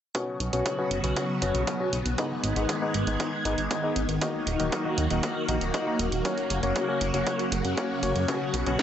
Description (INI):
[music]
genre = italo disco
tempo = 118 BPM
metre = 4/4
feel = straight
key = B major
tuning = A4 = 440 Hz
[part]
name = phased string machine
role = sustained chords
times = 0.1-8.8 s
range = C#3 to G#4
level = -29 LUFS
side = equal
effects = ensemble chorus, phaser, vintage 12-bit sampler grit
[part]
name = bright electric grand piano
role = stabs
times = 0.1-8.8 s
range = G#2 to D#5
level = -30 LUFS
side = left 2 dB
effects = low-pass filter
[part]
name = electronic kick drum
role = drums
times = 0.1-8.8 s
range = none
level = -32 LUFS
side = right 1 dB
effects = high-pass filter on kick, high-pass filter on room
[part]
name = house drum kit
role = drums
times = 0.1-8.8 s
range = hi-hat, snare drum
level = -33 LUFS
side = right 3 dB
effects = none
[part]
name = chorused synth bass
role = bass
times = 0.4-8.8 s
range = D#1 to F#2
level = -30 LUFS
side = equal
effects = none
[sound]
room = light reverb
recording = nothing above 8.0 kHz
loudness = -25 LUFS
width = side -9 dB against mid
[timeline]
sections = 0.1-8.8 A section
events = filter sweep on analog synth bass 0.1-8.8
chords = 0.1 Bsus2; 2.2 G#m; 4.2 D#m; 6.2 F#; 8.3 Bsus2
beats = | 0.15 0.66 1.17 1.67 | 2.18 2.69 3.20 3.71 | 4.22 4.72 5.23 5.74 | 6.25 6.76 7.27 7.78 | 8.28 8.79